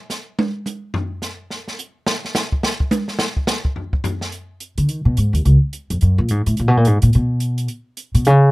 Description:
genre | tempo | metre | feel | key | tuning
jazz, small-group swing and bop | 214 BPM | 4/4 | swing 62% on 8ths | G# minor | A4 = 440 Hz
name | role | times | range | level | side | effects
open jazz drum kit | drums | 0.1-8.3 s | hi-hat, kick drum, snare drum, toms | -22 LUFS | equal | none
upright bass | bass | 4.8-8.5 s | C#2 to D#3 | -13 LUFS | equal | none
room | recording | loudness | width
little or no reverb | rough home demo mix | -16 LUFS | side -22 dB against mid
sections
0.0-4.3 A section; 4.3-8.5 A section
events
drum solo 0.0-4.3; upright bass solo 4.3-8.5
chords
none

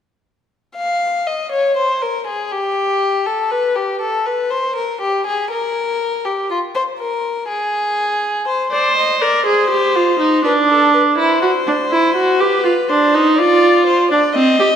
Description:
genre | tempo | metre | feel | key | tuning
classical, baroque-style fugue for string quartet | 61 BPM | 4/4 | straight | unclear | A4 = 440 Hz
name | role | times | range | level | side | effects
dark violin | second line | 0.8-14.8 s | F4 to F5 | -17 LUFS | left 2 dB | none
warm viola | accompaniment | 8.7-14.7 s | C4 to C5 | -13 LUFS | right 2 dB | none
room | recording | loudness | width
wet scoring stage reverb, RT60 1.9 s | none | -14 LUFS | side -8 dB against mid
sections
0.5-14.8 A section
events
none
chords
0.5 N.C.; 8.5 Cm; 10.5 D7; 12.4 G7

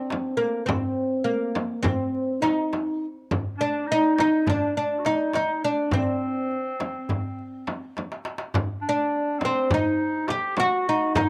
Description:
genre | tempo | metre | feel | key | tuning
Turkish makam ensemble | 206 BPM (eighths) | 9/8 | straight | C makam nikriz | A4 = 440 Hz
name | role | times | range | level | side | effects
oud | melody | 0.0-11.3 s | Bb3 to G4 | -26 LUFS | equal | none
darbuka | percussion | 0.1-11.3 s | none | -33 LUFS | equal | none
frame drum | percussion | 0.1-11.3 s | none | -32 LUFS | equal | none
breathy clarinet | second line | 3.6-11.3 s | C4 to G4 | -32 LUFS | equal | none
room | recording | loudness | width
moderate spring reverb, RT60 1.1 s, small room ambience | none | -25 LUFS | mono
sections
0.0-8.5 A section; 8.5-11.3 B section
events
drum fill 8.0-8.5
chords
none

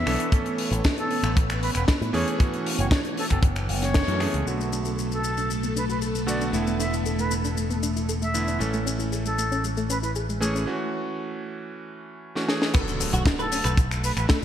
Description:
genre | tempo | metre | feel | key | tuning
nu-disco, nu disco | 116 BPM | 4/4 | straight | B minor | A4 = 440 Hz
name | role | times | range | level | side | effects
reedy silver concert flute | melody | 0.0-14.2 s | A4 to E5 | -31 LUFS | equal | digital delay
bright electric grand piano | accompaniment | 0.0-14.4 s | D3 to A4 | -31 LUFS | right 2 dB | sidechain pumping, low-pass filter
string machine, full ensemble | sustained chords | 0.0-14.4 s | A3 to C#5 | -32 LUFS | equal | ensemble chorus, sidechain pumping
picked electric bass with an envelope filter | bass | 0.0-14.3 s | E1 to A2 | -28 LUFS | equal | none
tight funk drum kit | drums | 0.1-14.4 s | crash cymbal, finger snaps, hi-hat, shaker, snare drum | -30 LUFS | left 2 dB | gated reverb
kick drum | drums | 0.3-4.1, 12.7-14.4 s | none | -21 LUFS | equal | none
soft round pluck | arpeggios | 4.5-10.6 s | G#3 to A4 | -33 LUFS | left 2 dB | chorus, sidechain pumping, digital delay
direct-recorded clean electric guitar | riff | 12.7-14.4 s | A3 to B4 | -32 LUFS | equal | ensemble chorus
impact | sound effects | 12.9-14.4 s | none | -34 LUFS | equal | none
room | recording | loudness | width
moderate lush hall reverb, RT60 2.0 s | bright 1980s-style digital production | -22 LUFS | side -10 dB against mid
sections
0.0-4.5 A section; 4.5-12.7 B section; 12.7-14.4 C section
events
band accent 4.0; filter sweep on synth arpeggio sound 4.5-12.7; break 10.7-12.7; drum fill 12.4-12.7; drop 12.7-14.4; impact 12.7-14.4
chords
0.3 A; 2.4 F#m7; 4.5 Bm7; 6.5 E7sus4; 8.6 Amaj7; 10.7 F#m7; 12.7 Bm7

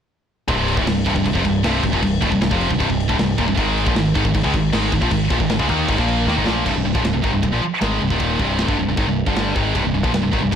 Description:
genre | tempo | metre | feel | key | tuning
heavy metal | 155 BPM | 4/4 | straight | C minor | A4 = 440 Hz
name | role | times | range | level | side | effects
scooped high-gain guitar | riff | 0.5-10.6 s | C2 to Eb4 | -21 LUFS | right 9 dB | distortion
tight distorted guitar | riff | 0.5-10.6 s | C2 to Eb4 | -22 LUFS | left 11 dB | distortion
growling picked electric bass | bass | 0.5-10.6 s | C1 to Eb2 | -24 LUFS | equal | overdrive, transformer saturation
tight metal drum kit | drums | 0.5-10.6 s | crash cymbal, kick drum, ride cymbal, snare drum | -24 LUFS | equal | none
room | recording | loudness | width
small room ambience | blown-out, overdriven recording, overdrive | -16 LUFS | side -8 dB against mid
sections
0.5-6.7 A section; 6.7-10.6 B section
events
drum fill 6.3-6.7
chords
0.5 Cm; 3.6 Ab5; 6.7 Cm

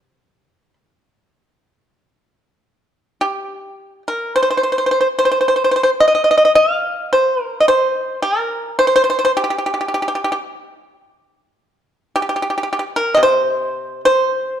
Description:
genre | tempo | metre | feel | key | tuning
chinese traditional, Chinese solo plucked strings | 54 BPM | 4/4 | rubato | C yu mode | A4 = 440 Hz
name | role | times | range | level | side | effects
pipa | solo | 0.0-14.6 s | C3 to F5 | -14 LUFS | equal | none
room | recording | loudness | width
moderate recital hall reverb, RT60 1.6 s | dark, warm production | -14 LUFS | side -9 dB against mid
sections
0.0-2.0 A section; 2.0-14.6 B section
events
none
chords
none

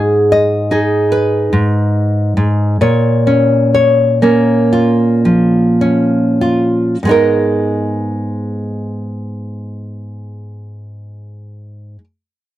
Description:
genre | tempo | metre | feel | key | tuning
folk, solo fingerstyle acoustic guitar | 46-75 BPM | 4/4 | rubato | G# dorian | A4 = 440 Hz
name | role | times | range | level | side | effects
nylon-string guitar | solo | 0.0-12.0 s | G#2 to D#5 | -12 LUFS | equal | none
room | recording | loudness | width
little or no reverb | dry, close 1970s-style studio recording | -11 LUFS | side -14 dB against mid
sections
0.0-7.0 A section; 7.0-12.2 B section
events
slowing down 0.0-7.0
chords
0.0 G#m; 2.8 A#m; 7.0 G#madd9

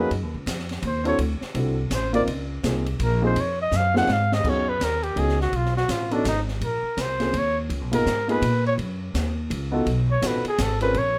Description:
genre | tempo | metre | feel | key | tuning
jazz, small-group swing and bop | 166 BPM | 3/4 | swing 62% on 8ths | unclear | A4 = 442 Hz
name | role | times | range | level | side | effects
warm flugelhorn | melody | 0.0-11.2 s | D4 to Gb5 | -27 LUFS | equal | plate reverb
dark baby grand piano | accompaniment | 0.0-10.9 s | Bb3 to Bb4 | -28 LUFS | equal | none
upright bass | bass | 0.0-11.2 s | Ab1 to Bb2 | -28 LUFS | equal | none
open jazz drum kit | drums | 0.1-11.1 s | crash cymbal, hi-hat, kick drum, ride cymbal, snare drum | -34 LUFS | equal | none
room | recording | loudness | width
light reverb | none | -24 LUFS | mono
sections
0.0-4.4 A section; 4.4-11.2 A section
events
flugelhorn solo 0.0-11.2; drum fill 3.7-4.4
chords
0.1 Gb5; 1.2 D9; 2.3 Dbmaj13; 4.4 Cb69; 5.5 Cb7(no3); 6.6 Bbsus2; 7.7 Db13 (rootless); 8.8 Gb5; 9.9 Cb7#11

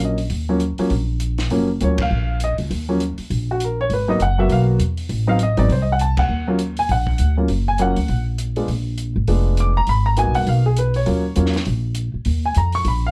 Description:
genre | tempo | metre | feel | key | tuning
jazz piano trio | 201 BPM | 4/4 | swing 60% on 8ths | Eb minor | A4 = 440 Hz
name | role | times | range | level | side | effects
warm upright piano | melody | 0.0-13.1 s | F3 to D6 | -23 LUFS | equal | none
upright bass | bass | 0.0-13.1 s | F1 to F2 | -22 LUFS | equal | none
compact cocktail drum kit | drums | 0.0-12.9 s | hi-hat, kick drum, ride cymbal, snare drum | -34 LUFS | equal | none
room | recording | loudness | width
light reverb | dark, warm production | -20 LUFS | mono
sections
0.0-13.1 A section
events
band accent 2.0, 6.1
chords
0.0 Ebm7; 3.9 Abm7; 5.1 Adim7; 6.3 Ebm; 8.7 Bb7b9; 9.9 Abm7; 11.1 Eb7(no3)

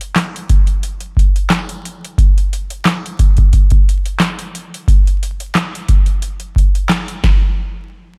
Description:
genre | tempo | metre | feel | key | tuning
hip hop | 89 BPM | 4/4 | swing 56% on 16ths | none | none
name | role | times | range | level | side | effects
booming analog drum machine | drums | 0.0-7.4 s | handclaps, hi-hat, kick drum, snare drum | -15 LUFS | equal | none
room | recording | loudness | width
little or no reverb | vinyl crackle | -15 LUFS | mono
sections
0.0-7.6 A section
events
none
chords
none

